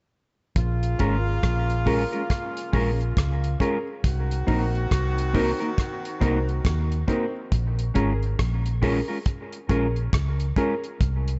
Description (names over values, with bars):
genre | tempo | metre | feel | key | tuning
dub reggae | 69 BPM | 4/4 | swing 61% on 16ths | Bb minor | A4 = 440 Hz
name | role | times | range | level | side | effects
clear horn section | second line | 0.6-7.0 s | Db3 to Gb4 | -34 LUFS | equal | dub echo
vintage muted fingered electric bass | bass | 0.6-11.4 s | Ab1 to Eb2 | -27 LUFS | equal | none
damped 70s drum kit | drums | 0.6-11.4 s | hi-hat, kick drum, rim click | -28 LUFS | equal | none
mellow electric guitar | accompaniment | 1.0-10.7 s | Ab3 to Bb4 | -32 LUFS | equal | dub echo
dark upright piano | stabs | 1.0-10.8 s | C4 to Bb4 | -34 LUFS | equal | dub echo
room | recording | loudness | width
light reverb, small room ambience | dark, warm production, nothing above 7.9 kHz | -25 LUFS | mono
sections
0.6-11.4 A section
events
none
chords
0.6 Bbm7; 4.0 Cm7b5; 7.5 Bbm7